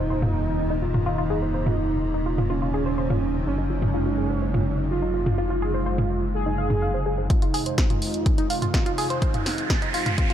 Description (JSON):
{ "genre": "melodic techno", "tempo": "125 BPM", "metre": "4/4", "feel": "straight", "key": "F phrygian", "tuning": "A4 = 444 Hz", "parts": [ { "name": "analog synth brass", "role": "melody", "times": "0.0-10.3 s", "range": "C4 to Ab4", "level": "-29 LUFS", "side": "right 3 dB", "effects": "chorus, sidechain pumping, tape echo" }, { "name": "warm analog pad", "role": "sustained chords", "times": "0.0-10.3 s", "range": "C3 to F4", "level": "-32 LUFS", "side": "left 1 dB", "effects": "chorus, sidechain pumping" }, { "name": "tight sequenced synth", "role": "arpeggios", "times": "0.0-10.3 s", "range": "Eb4 to F5", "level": "-30 LUFS", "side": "left 1 dB", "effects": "chorus, sidechain pumping, tape echo" }, { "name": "swelling detuned saw bass", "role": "bass", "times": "0.0-7.3 s", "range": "Eb1 to Gb1", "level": "-27 LUFS", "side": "equal", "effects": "sidechain pumping" }, { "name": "swarming drone", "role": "drone", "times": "0.0-10.3 s", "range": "F2 to C3", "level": "-34 LUFS", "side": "equal", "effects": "built-in reverb, sidechain pumping" }, { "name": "punchy analog drum machine", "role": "drums", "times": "0.2-10.3 s", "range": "hi-hat, snare drum, toms", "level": "-27 LUFS", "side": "equal", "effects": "low-pass filter on toms, low-pass filter on hats, low-pass filter on snare" }, { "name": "electronic kick drum", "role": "drums", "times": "7.3-10.3 s", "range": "none", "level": "-22 LUFS", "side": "equal", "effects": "none" }, { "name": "riser", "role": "sound effects", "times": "8.2-10.3 s", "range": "none", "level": "-31 LUFS", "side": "right 6 dB", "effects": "none" } ], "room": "light reverb", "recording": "dark, warm production", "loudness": "-21 LUFS", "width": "side -10 dB against mid", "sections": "0.0-7.3 A section; 7.3-10.3 B section", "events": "filter sweep on synth arpeggio sound 0.0-7.3; filter sweep on analog polysynth 0.0-7.3, 7.3-10.3; filter sweep on analog synth pad 0.0-7.3; build-up 7.3-10.3; filter sweep 7.3-10.3; riser 8.2-10.3", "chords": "0.0 Eb5; 3.5 Gbsus2; 7.3 Fm", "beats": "0.10 0.58 1.06 | 1.54 2.02 2.50 2.98 | 3.46 3.94 4.42 4.90 | 5.38 5.86 6.34 6.82 | 7.30 7.78 8.26 8.74 | 9.22 9.70 10.18" }